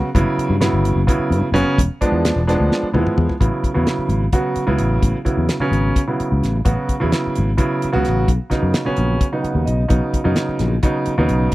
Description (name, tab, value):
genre	electric jazz fusion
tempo	258 BPM (eighths)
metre	7/8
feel	straight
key	A major from 3.4 s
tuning	A4 = 440 Hz
part	warm grand piano	accompaniment	0.0-11.5 s	C#3 to F#5	-19 LUFS	right 1 dB	none
part	damped 70s drum kit	drums	0.1-11.5 s	hi-hat, kick drum, snare drum, toms	-19 LUFS	equal	none
part	sustaining fretless electric bass	bass	0.2-11.5 s	E1 to G2	-18 LUFS	left 1 dB	analog chorus
room	little or no reverb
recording	dry, close 1970s-style studio recording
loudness	-16 LUFS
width	side -17 dB against mid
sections	0.0-3.4 A section; 3.4-11.5 B section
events	drum fill 2.7-3.4; grand piano fill 9.2-9.9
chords	0.2 Gmaj7; 1.8 E7b9; 3.4 Aadd9; 8.3 Badd9